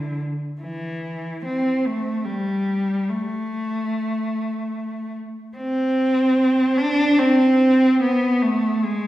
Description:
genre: classical, free, expressive piece for unaccompanied cello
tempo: free time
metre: none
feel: none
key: A minor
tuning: A4 = 440 Hz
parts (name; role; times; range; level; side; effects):
- warm cello; solo; 0.0-9.1 s; D3 to D4; -19 LUFS; equal; none
room: wet recital hall reverb, RT60 1.6 s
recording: recorded in a church or concert hall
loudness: -18 LUFS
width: side -15 dB against mid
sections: 0.0-9.1 A section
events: none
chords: none

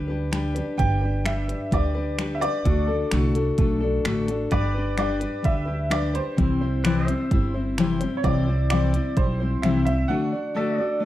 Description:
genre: honky-tonk and classic country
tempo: 129 BPM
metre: 4/4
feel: straight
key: G major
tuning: A4 = 443 Hz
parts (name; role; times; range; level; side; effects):
- bright upright piano; second line; 0.0-11.1 s; B4 to G5; -29 LUFS; right 1 dB; none
- picked steel-string acoustic guitar; accompaniment; 0.0-11.1 s; C3 to D5; -25 LUFS; left 2 dB; none
- upright bass; bass; 0.0-10.0 s; G1 to D2; -25 LUFS; right 1 dB; none
- minimal click drum kit; drums; 0.3-10.0 s; finger snaps, hi-hat, kick drum; -26 LUFS; right 1 dB; none
- pedal steel guitar; sustained chords; 4.5-11.1 s; A4 to E5; -35 LUFS; equal; none
room: moderate large studio reverb, RT60 1.1 s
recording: dark, warm production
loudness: -21 LUFS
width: side -14 dB against mid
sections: 0.0-11.1 A section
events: upright piano solo 0.0-11.1; break 10.1-11.1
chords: 0.0 G; 2.7 D; 4.5 G; 6.4 C; 10.1 D

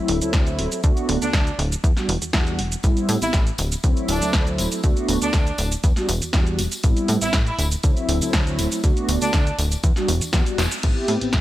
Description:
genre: filtered disco house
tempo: 120 BPM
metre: 4/4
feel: straight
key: unclear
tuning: A4 = 440 Hz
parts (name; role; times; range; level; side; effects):
- mellow synth brass; accompaniment; 0.0-11.3 s; F#3 to G4; -25 LUFS; equal; chorus, phaser, cassette tape, sidechain pumping, low-pass filter
- plucky analog bass; bass; 0.1-11.4 s; D1 to A2; -24 LUFS; equal; sidechain pumping, low-pass filter
- punchy analog drum machine; drums; 0.1-11.4 s; crash cymbal, hi-hat, shaker, snare drum; -26 LUFS; right 1 dB; sidechain pumping on hats, sidechain pumping on perc, sidechain pumping on cymbals
- electronic kick drum; drums; 0.3-11.4 s; none; -19 LUFS; equal; none
- bright horn section; melody; 1.2-9.6 s; D4 to E4; -27 LUFS; equal; sidechain pumping, low-pass filter, tape echo
- tambourine; percussion; 2.8-11.4 s; none; -33 LUFS; left 3 dB; sidechain pumping on perc, low-pass filter on perc
room: digital ambience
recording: none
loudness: -18 LUFS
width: side -15 dB against mid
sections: 0.0-10.8 A section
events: drop 0.0-10.8; drum fill 10.6; band accent 10.6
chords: 0.0 D7; 0.8 D6; 1.8 Em7; 2.8 Am7; 3.6 D7; 4.8 D6; 5.8 Em7; 6.8 Am7; 7.6 D7; 8.8 D6; 9.8 Em7; 10.8 Am7

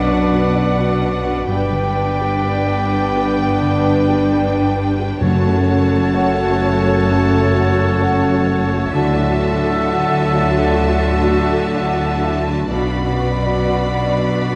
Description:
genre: cinematic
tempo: 64 BPM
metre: 4/4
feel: rubato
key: F# phrygian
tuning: A4 = 441 Hz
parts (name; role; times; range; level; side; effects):
- warm symphonic violin section; melody; 0.0-14.6 s; F#5 to B5; -30 LUFS; equal; none
- bright oboe; second line; 0.0-14.6 s; C#5 to E5; -30 LUFS; equal; none
- clear clarinet; second line; 0.0-14.6 s; A4 to B4; -29 LUFS; equal; none
- clear symphonic violin section; second line; 0.0-14.6 s; B4 to E5; -31 LUFS; equal; none
- mellow hollow silver concert flute; second line; 0.0-14.6 s; F#5 to G5; -30 LUFS; equal; none
- felt-muted upright piano; accompaniment; 0.0-14.6 s; B1 to F#5; -27 LUFS; equal; none
- rich symphonic viola section; accompaniment; 0.0-14.6 s; D4 to F#4; -27 LUFS; equal; none
- mellow French horn section; sustained chords; 0.0-14.6 s; F#3 to E4; -24 LUFS; equal; none
- concert harp; arpeggios; 0.0-14.6 s; F#2 to F#5; -27 LUFS; equal; none
- clear symphonic cello section; bass; 0.0-14.6 s; F#2 to D3; -24 LUFS; equal; none
- rich symphonic double bass section; bass; 0.0-14.6 s; F#1 to D2; -25 LUFS; equal; none
- timpani; percussion; 5.2-6.6 s; F#2; -26 LUFS; equal; none
room: wet scoring stage reverb, RT60 2.0 s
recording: vinyl crackle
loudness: -17 LUFS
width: mono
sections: 0.0-14.6 A section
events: none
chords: 0.0 Bm; 1.5 G; 5.2 F#m; 8.9 Dadd9; 12.7 Bm

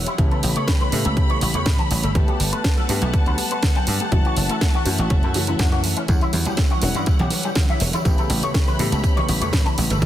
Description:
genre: nu-disco, nu disco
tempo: 122 BPM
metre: 4/4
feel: straight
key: unclear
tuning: A4 = 440 Hz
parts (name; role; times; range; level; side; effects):
- dark grand piano; accompaniment; 0.0-10.1 s; C#3 to F#5; -27 LUFS; left 1 dB; sidechain pumping, tape echo
- warm studio string section; sustained chords; 0.0-10.1 s; A3 to B5; -29 LUFS; left 1 dB; sidechain pumping
- wide unison pluck; arpeggios; 0.0-10.1 s; C#3 to A3; -30 LUFS; left 1 dB; sidechain pumping, digital delay
- dry thumbed slap bass; bass; 0.0-10.1 s; E1 to A2; -23 LUFS; equal; tube saturation, sidechain pumping
- electric guitar with an envelope filter; riff; 0.1-10.0 s; C#4 to A5; -29 LUFS; left 2 dB; ensemble chorus, tape echo
- house drum kit; drums; 0.1-10.1 s; hi-hat, snare drum; -26 LUFS; right 1 dB; overdrive
- electronic kick drum; drums; 0.2-10.1 s; none; -19 LUFS; equal; overdrive
- tambourine, congas and bongos; percussion; 6.1-10.1 s; none; -30 LUFS; right 2 dB; none
room: light reverb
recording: dense, heavily limited modern master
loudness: -17 LUFS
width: side -12 dB against mid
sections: 0.0-10.1 A section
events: none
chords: 0.2 A9; 2.2 Gmaj9; 4.1 F#m7; 6.1 Em69; 8.1 A9

